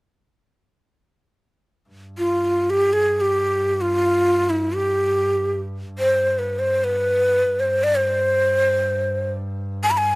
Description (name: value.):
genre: turkish.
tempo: free time.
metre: none.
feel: none.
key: G makam hicaz.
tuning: A4 = 440 Hz.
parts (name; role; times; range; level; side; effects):
rich double bass; drone; 1.9-10.2 s; G2; -30 LUFS; equal; none.
breathy ney; melody; 2.2-10.2 s; E4-39c to B5; -18 LUFS; equal; none.
room: little or no reverb.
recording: recorded outdoors, with no room sound.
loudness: -18 LUFS.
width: side -24 dB against mid.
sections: 1.9-10.2 A section.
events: none.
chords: none.